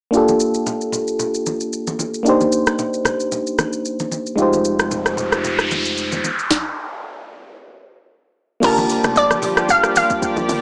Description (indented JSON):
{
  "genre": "amapiano",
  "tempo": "113 BPM",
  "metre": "4/4",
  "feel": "swing 55% on 16ths",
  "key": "G minor",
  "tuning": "A4 = 436 Hz",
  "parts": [
    { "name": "FM electric piano", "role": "accompaniment", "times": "0.1-10.6 s", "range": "Ab3 to A5", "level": "-21 LUFS", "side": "equal", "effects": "none" },
    { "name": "afro-pop drum kit", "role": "drums", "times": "0.1-10.6 s", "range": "crash cymbal, hi-hat, kick drum, rim click, shaker, snare drum", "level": "-24 LUFS", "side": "equal", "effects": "none" },
    { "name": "congas", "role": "percussion", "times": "0.3-10.6 s", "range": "none", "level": "-32 LUFS", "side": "equal", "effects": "none" },
    { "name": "fingered electric bass with an envelope filter", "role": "bass", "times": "4.4-6.2 s", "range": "F1", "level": "-35 LUFS", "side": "equal", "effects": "none" },
    { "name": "noise sweep", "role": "sound effects", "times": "4.8-7.6 s", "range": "none", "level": "-27 LUFS", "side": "equal", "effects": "none" },
    { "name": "analog pluck", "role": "melody", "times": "8.6-10.6 s", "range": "Bb4 to F5", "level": "-19 LUFS", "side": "equal", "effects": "chorus, digital delay" },
    { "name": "lush unison pad", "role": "sustained chords", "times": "8.6-10.6 s", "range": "F3 to D5", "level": "-25 LUFS", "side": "equal", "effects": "chorus, sidechain pumping" },
    { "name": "hollow log drum bass", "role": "bass", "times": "8.6-10.6 s", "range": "F1 to Bb1", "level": "-29 LUFS", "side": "equal", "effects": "none" }
  ],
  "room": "light reverb, digital ambience",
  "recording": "small speaker sound",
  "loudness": "-19 LUFS",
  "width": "mono",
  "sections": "0.1-8.6 A section; 8.6-10.6 B section",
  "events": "noise sweep 4.8-8.6; stop 6.5-8.6; drop 8.6-10.6",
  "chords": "0.1 Gm9; 2.3 Cm9; 4.4 Fm9; 6.2 N.C.; 8.6 Gm9",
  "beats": "| 0.13 0.67 1.20 1.73 | 2.26 2.79 3.32 3.85 | 4.38 4.91 5.44 5.97 | 6.51 7.04 7.57 8.10 | 8.63 9.16 9.69 10.22"
}